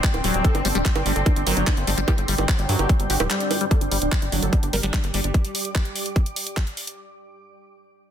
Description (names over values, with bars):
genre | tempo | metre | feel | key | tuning
psychedelic trance | 147 BPM | 4/4 | straight | unclear | A4 = 441 Hz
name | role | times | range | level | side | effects
wide unison lead | melody | 0.0-5.3 s | G3 to Bb4 | -30 LUFS | equal | phaser, sidechain pumping, ping-pong delay
bubbling stepped-filter texture | sustained chords | 0.0-3.8 s | D3 to C4 | -30 LUFS | left 1 dB | chorus, built-in reverb, sidechain pumping
electronic kick drum | drums | 0.0-6.6 s | none | -20 LUFS | equal | none
garage drum kit | drums | 0.0-7.0 s | bongos, handclaps, hi-hat | -26 LUFS | right 3 dB | none
granular cloud pad | texture | 0.0-7.0 s | G3 to D6 | -32 LUFS | right 2 dB | built-in reverb, sidechain pumping
tight sequencer bass | bass | 0.1-5.3 s | D1 to G2 | -25 LUFS | equal | none
liquid acid bass | riff | 0.2-5.2 s | F#3 to G4 | -28 LUFS | moving between left 9 dB and right 7 dB | phaser, auto-pan, sidechain pumping, ping-pong delay
formant-sweep wobble bass | second line | 0.4-2.9 s | F#3 to C4 | -39 LUFS | left 3 dB | none
room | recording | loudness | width
light reverb | dense, heavily limited modern master | -19 LUFS | side -9 dB against mid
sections
0.0-3.7 A section; 3.7-7.0 B section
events
drop 0.0-3.7; kick drops out 3.3-3.7; fade-out on ambient pad 3.7-7.0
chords
0.0 G5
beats
0.04 | 0.45 0.85 1.26 1.67 | 2.08 2.49 2.89 3.30 | 3.71 4.12 4.53 4.93 | 5.34 5.75 6.16 6.57